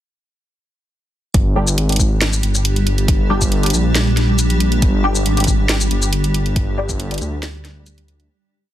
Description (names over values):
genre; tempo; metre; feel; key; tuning
deep dubstep; 138 BPM; 4/4; half-time; G phrygian; A4 = 440 Hz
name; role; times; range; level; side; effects
granular cloud pad; sustained chords; 2.2-8.3 s; G3 to G4; -23 LUFS; right 1 dB; built-in reverb
dark detuned saw bass; bass; 1.3-8.3 s; G1 to D2; -18 LUFS; equal; none
electronic kick drum; drums; 1.3-7.0 s; none; -18 LUFS; equal; small room ambience
garage drum kit; drums; 1.3-8.3 s; hi-hat, shaker, snare drum; -21 LUFS; equal; overdrive, small room ambience
filtered dub chord stab; stabs; 1.6-6.9 s; G3 to G4; -26 LUFS; left 2 dB; phaser, ensemble chorus, dub echo
room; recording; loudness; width
little or no reverb; dense, heavily limited modern master; -14 LUFS; side -12 dB against mid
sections
1.3-8.3 drop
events
drop 1.3-8.3; fade-out 6.0-8.3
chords
1.3 G5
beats
| 1.34 1.78 2.21 2.65 | 3.08 3.52 3.95 4.39 | 4.82 5.26 5.69 6.13 | 6.56 7.00 7.43 7.87